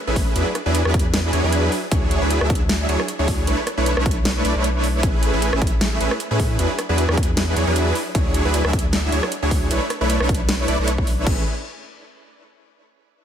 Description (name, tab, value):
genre	future bass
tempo	154 BPM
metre	4/4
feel	swing 55% on 16ths, half-time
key	A major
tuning	A4 = 440 Hz
part	supersaw chords	riff	0.1-11.4 s	F#3 to E5	-22 LUFS	right 1 dB	sidechain pumping, ping-pong delay
part	saturated sub bass	bass	0.1-11.4 s	A1 to A2	-22 LUFS	equal	sidechain pumping
part	dubstep drum kit	drums	0.2-11.4 s	crash cymbal, hi-hat, rim click, snare drum	-26 LUFS	equal	studio reverb
part	electronic kick drum	drums	0.2-11.4 s	none	-22 LUFS	equal	studio reverb
room	light reverb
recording	none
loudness	-17 LUFS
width	side -9 dB against mid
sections	0.0-11.3 A section; 11.3-12.8 B section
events	drop 0.0-11.3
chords	0.4 E9; 1.7 Dmaj9#11; 3.5 Bm11; 5.0 Amaj9; 6.6 E9; 8.0 Dmaj9#11; 9.7 Bm11; 11.3 Amaj9